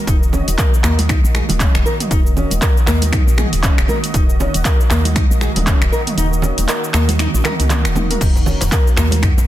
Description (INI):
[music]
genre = afro house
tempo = 118 BPM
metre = 4/4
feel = swing 59% on 16ths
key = Eb minor pentatonic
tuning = A4 = 444 Hz
[part]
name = warm analog pad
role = sustained chords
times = 0.0-9.5 s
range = Eb3 to Eb5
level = -25 LUFS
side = right 3 dB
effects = chorus, sidechain pumping
[part]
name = nylon-string guitar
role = arpeggios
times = 0.1-9.3 s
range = Bb3 to Bb4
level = -24 LUFS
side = left 1 dB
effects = sidechain pumping, ping-pong delay
[part]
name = woody FM bass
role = bass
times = 0.1-9.5 s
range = Eb1 to Eb2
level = -18 LUFS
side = equal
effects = sidechain pumping
[part]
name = deep house drum kit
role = drums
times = 0.1-9.5 s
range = crash cymbal, finger snaps, handclaps, hi-hat, shaker, toms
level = -21 LUFS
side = equal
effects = overdrive, studio reverb
[part]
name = electronic kick drum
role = drums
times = 0.1-9.3 s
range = none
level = -15 LUFS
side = equal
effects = overdrive, studio reverb
[part]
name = congas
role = percussion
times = 0.3-9.3 s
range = none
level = -26 LUFS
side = right 4 dB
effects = none
[part]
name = djembe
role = percussion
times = 8.4-9.5 s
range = none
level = -23 LUFS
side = left 2 dB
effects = none
[sound]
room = little or no reverb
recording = dense, heavily limited modern master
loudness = -13 LUFS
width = side -13 dB against mid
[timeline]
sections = 0.0-9.5 A section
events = kick drops out 6.2-8.2; drum fill 7.2-8.2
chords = 0.0 Ebm